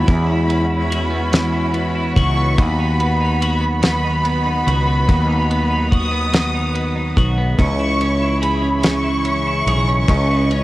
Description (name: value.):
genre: six-eight pop ballad.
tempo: 48 BPM (dotted quarters).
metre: 6/8.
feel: straight.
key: unclear.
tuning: A4 = 439 Hz.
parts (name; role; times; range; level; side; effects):
warm studio violin section; second line; 0.0-10.6 s; B5 to D#6; -22 LUFS; right 1 dB; cassette tape, tape echo.
twelve-string electric guitar; accompaniment; 0.0-10.6 s; C#3 to G#4; -22 LUFS; right 1 dB; cassette tape.
rich studio string section; sustained chords; 0.0-10.6 s; C#3 to D#5; -26 LUFS; left 1 dB; cassette tape.
fretless electric bass; bass; 0.0-10.6 s; B1 to E2; -19 LUFS; equal; none.
damped 70s drum kit; drums; 0.1-10.6 s; kick drum, ride cymbal, snare drum; -17 LUFS; equal; none.
room: little or no reverb.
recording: home recording on cassette.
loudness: -15 LUFS.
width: side -17 dB against mid.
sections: 0.0-10.6 A section.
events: none.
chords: 0.0 Eadd9; 2.6 B; 7.6 C#m.